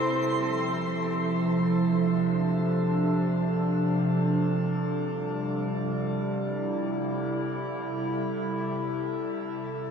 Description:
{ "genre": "ambient", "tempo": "free time", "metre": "none", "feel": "none", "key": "D minor", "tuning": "A4 = 440 Hz", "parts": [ { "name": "warbly tape-like pad", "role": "sustained chords", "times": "0.0-9.9 s", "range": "C3 to A4", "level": "-25 LUFS", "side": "right 1 dB", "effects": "chorus, built-in reverb" }, { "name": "Celtic harp", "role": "arpeggios", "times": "0.0-2.2 s", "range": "C4", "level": "-37 LUFS", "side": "left 1 dB", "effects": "ping-pong delay" }, { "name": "twinkling granular texture", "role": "texture", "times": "9.7-9.9 s", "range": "A5", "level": "-39 LUFS", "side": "equal", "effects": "built-in reverb" } ], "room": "wet shimmer reverb, RT60 8.3 s", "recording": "none", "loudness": "-25 LUFS", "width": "side -6 dB against mid", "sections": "0.0-9.9 A section", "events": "none", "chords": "0.0 Dm7; 4.9 Am7" }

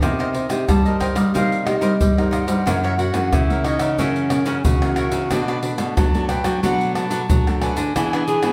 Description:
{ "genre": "samba and choro", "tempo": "91 BPM", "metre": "4/4", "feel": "straight", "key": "unclear", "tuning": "A4 = 440 Hz", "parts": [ { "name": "breathy tenor saxophone", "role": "second line", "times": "0.0-8.5 s", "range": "C#4 to G#4", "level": "-26 LUFS", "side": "equal", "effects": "none" }, { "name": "cavaquinho", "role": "accompaniment", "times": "0.0-8.5 s", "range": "D4 to E5", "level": "-30 LUFS", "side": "equal", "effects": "none" }, { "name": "nylon-string guitar", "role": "accompaniment", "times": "0.0-8.5 s", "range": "F#2 to G#4", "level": "-29 LUFS", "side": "equal", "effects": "none" }, { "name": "nylon-string guitar", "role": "bass", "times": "0.0-8.5 s", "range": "F#2 to G3", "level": "-25 LUFS", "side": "equal", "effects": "none" }, { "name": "egg shaker, surdo, pandeiro and tamborim", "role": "percussion", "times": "0.0-8.5 s", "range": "none", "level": "-24 LUFS", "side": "equal", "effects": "none" }, { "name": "hollow wooden flute", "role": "melody", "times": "0.7-8.5 s", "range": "Eb5 to A5", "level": "-28 LUFS", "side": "equal", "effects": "none" } ], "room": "wet studio reverb, RT60 0.9 s", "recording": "heard from further back in the room", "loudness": "-19 LUFS", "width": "mono", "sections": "0.0-8.5 A section", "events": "none", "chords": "0.0 Cm7; 2.7 F#7; 5.3 Bm7; 8.0 E7" }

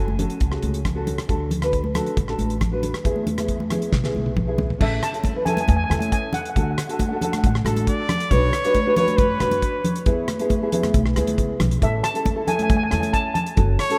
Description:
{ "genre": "calypso", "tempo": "137 BPM", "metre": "4/4", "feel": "straight", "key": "A major", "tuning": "A4 = 441 Hz", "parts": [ { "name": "steel pan", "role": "melody", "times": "0.0-0.2, 4.8-7.5, 11.8-14.0 s", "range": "E5 to A5", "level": "-30 LUFS", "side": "equal", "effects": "none" }, { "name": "nylon-string guitar", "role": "accompaniment", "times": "0.0-14.0 s", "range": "B3 to B4", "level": "-27 LUFS", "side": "equal", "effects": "none" }, { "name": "upright bass", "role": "bass", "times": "0.0-13.8 s", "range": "F#1 to F#2", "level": "-26 LUFS", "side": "equal", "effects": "none" }, { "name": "congas", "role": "percussion", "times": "0.1-13.5 s", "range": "none", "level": "-29 LUFS", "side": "equal", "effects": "none" }, { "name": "damped 70s drum kit", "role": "drums", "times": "0.2-14.0 s", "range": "crash cymbal, hi-hat, kick drum, rim click, snare drum, toms", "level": "-27 LUFS", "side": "equal", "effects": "none" }, { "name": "clear trumpet", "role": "second line", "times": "7.7-10.1, 13.8-14.0 s", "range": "A4 to D5", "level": "-29 LUFS", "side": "equal", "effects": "none" } ], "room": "moderate cathedral reverb, RT60 4.8 s", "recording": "in a vast, echoing space", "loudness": "-21 LUFS", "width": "mono", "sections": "0.0-4.8 A section; 4.8-14.0 B section", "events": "drum fill 3.9-4.8", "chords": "0.0 F#m; 1.3 D; 3.0 E; 4.8 A; 6.6 D; 8.3 Bmadd9; 10.1 E; 11.8 A" }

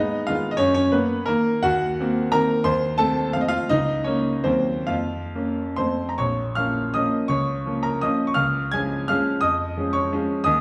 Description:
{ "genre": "classical, romantic triple-time dance for piano with dotted rhythms", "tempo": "128-199 BPM", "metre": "3/4", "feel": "rubato", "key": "Bb minor", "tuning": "A4 = 440 Hz", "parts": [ { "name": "clear grand piano", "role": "solo", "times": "0.0-10.6 s", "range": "Bb1 to Ab6", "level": "-22 LUFS", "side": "equal", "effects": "none" } ], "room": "wet large studio reverb, RT60 1.5 s", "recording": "heard from further back in the room", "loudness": "-23 LUFS", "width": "mono", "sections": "0.0-6.2 A section; 6.2-10.6 B section", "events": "none", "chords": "0.0 Abm; 0.6 Ebm/Gb; 1.6 Cm7b5/Eb; 2.7 F7/Eb; 3.7 Bbm/Db; 4.5 Cm7b5/Eb; 4.9 Bbm/F; 5.8 F; 6.2 Bbm; 7.3 Bbm/Db; 8.4 Db; 9.4 Db/F" }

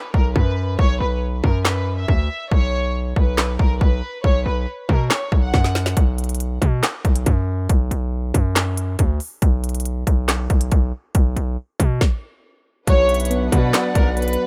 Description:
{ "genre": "hip hop, trap", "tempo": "139 BPM", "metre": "4/4", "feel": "half-time", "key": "B harmonic minor", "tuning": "A4 = 441 Hz", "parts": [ { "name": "warm studio violin section", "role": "melody", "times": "0.0-5.9, 12.9-14.5 s", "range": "A#4 to F#5", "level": "-27 LUFS", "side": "equal", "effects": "low-pass filter" }, { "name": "distorted 808-style bass", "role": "bass", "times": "0.1-14.4 s", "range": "B1 to B2", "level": "-23 LUFS", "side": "equal", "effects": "distortion" }, { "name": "trap drum kit", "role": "drums", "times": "0.1-14.4 s", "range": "handclaps, hi-hat, kick drum, snare drum", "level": "-21 LUFS", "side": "equal", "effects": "none" }, { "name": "soft electric-piano-like synth keys", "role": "accompaniment", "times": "12.9-14.5 s", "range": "F#3 to F#4", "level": "-26 LUFS", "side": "equal", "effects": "chorus, low-pass filter" }, { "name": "dark studio string section", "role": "sustained chords", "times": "12.9-14.5 s", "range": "B3 to F#5", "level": "-31 LUFS", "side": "equal", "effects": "none" }, { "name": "mellow hollow jazz flute", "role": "second line", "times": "13.1-14.5 s", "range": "D5 to E5", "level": "-31 LUFS", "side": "equal", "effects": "digital delay" } ], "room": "small room ambience", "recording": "rough home demo mix", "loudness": "-20 LUFS", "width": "mono", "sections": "0.0-12.9 A section; 12.9-14.5 B section", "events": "break 0.0-6.0; drum fill 5.5-6.0; stop 12.0-12.9", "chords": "0.0 B5; 0.8 Esus2/B; 2.5 B5; 7.7 Bm; 9.4 N.C.; 12.9 Bm" }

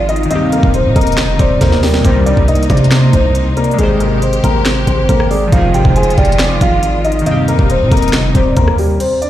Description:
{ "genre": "hip hop, trap", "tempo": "138 BPM", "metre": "4/4", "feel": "half-time", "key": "unclear", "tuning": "A4 = 440 Hz", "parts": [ { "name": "dark grand piano", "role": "melody", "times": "0.0-9.3 s", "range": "G3 to Ab5", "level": "-16 LUFS", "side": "left 1 dB", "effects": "low-pass filter, ping-pong delay" }, { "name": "warm velvety synth lead", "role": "second line", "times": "0.0-9.0 s", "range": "Bb4 to F5", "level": "-21 LUFS", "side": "right 3 dB", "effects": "chorus, ping-pong delay" }, { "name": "glassy digital keys", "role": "accompaniment", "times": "0.0-9.0 s", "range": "C3 to C5", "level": "-21 LUFS", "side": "left 2 dB", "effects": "chorus, low-pass filter" }, { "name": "clear symphonic string section", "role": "sustained chords", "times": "0.0-9.0 s", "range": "C3 to G4", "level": "-21 LUFS", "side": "left 1 dB", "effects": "none" }, { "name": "hard-hitting 808-style bass", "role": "bass", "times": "0.0-9.0 s", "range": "Eb1 to C3", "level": "-14 LUFS", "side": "equal", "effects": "none" }, { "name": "trap drum kit", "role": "drums", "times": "0.1-9.3 s", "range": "crash cymbal, handclaps, hi-hat, kick drum, rim click, snare drum", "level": "-15 LUFS", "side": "equal", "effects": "overdrive" }, { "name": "analog synth brass", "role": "stabs", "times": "0.3-7.7 s", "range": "Eb2 to G3", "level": "-18 LUFS", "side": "equal", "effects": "chorus" } ], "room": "digital ambience", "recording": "played on a big sound system in a bare room, large studio reverb", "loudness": "-10 LUFS", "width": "side -12 dB against mid", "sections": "0.0-9.0 A section", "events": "drum fill 1.6-2.0; break 9.0", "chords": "0.3 Eb6; 2.0 Cm7; 3.8 Abmaj7; 5.5 Fm7; 7.3 Eb6" }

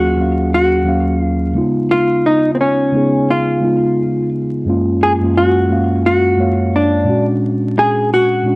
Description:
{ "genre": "hip hop", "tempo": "87 BPM", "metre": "4/4", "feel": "swing 60% on 16ths", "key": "F# major", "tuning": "A4 = 439 Hz", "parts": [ { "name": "hollow-body jazz guitar", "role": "melody", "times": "0.0-8.6 s", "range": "B#3 to G#4", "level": "-14 LUFS", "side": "equal", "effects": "low-pass filter, cassette tape" }, { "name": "mellow tine electric piano", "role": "accompaniment", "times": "0.0-8.6 s", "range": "D#2 to E#5", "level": "-15 LUFS", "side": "equal", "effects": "low-pass filter, cassette tape" } ], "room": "moderate spring reverb, RT60 1.9 s", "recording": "home recording on cassette, vinyl crackle", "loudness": "-12 LUFS", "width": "side -25 dB against mid", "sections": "0.0-4.7 A section; 4.7-8.6 B section", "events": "none", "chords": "0.0 D#m7; 1.6 C#7; 4.7 F#maj7; 7.1 A#7alt" }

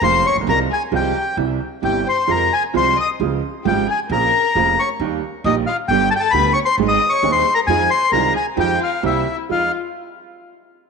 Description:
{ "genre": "tango", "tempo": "133 BPM", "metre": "4/4", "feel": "rubato", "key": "F minor", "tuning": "A4 = 439 Hz", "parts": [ { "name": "bandoneon", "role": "melody", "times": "0.0-9.7 s", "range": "Eb5 to Eb6", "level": "-18 LUFS", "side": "left 3 dB", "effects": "none" }, { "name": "warm chamber violin section", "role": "second line", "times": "0.0-9.7 s", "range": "Eb4 to Eb5", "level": "-25 LUFS", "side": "left 13 dB", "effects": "none" }, { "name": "warm upright piano", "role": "accompaniment", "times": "0.0-9.7 s", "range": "Eb1 to Ab4", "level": "-21 LUFS", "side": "right 13 dB", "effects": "none" }, { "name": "upright bass", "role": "bass", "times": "0.0-9.7 s", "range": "F1 to F2", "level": "-26 LUFS", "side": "right 1 dB", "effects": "none" } ], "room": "moderate plate reverb, RT60 2.6 s", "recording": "1960s-style stereo with parts hard left and right, nothing above 10.9 kHz", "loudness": "-15 LUFS", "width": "side -5 dB against mid", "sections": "0.0-9.5 A section; 9.5-10.9 B section", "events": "none", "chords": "0.5 Fm/C; 1.4 C; 2.3 Fm; 3.2 Db; 4.1 Bbmadd9; 5.0 Eb; 5.9 G; 6.8 Ab; 7.7 Fm7; 9.0 C7; 9.5 Fm7" }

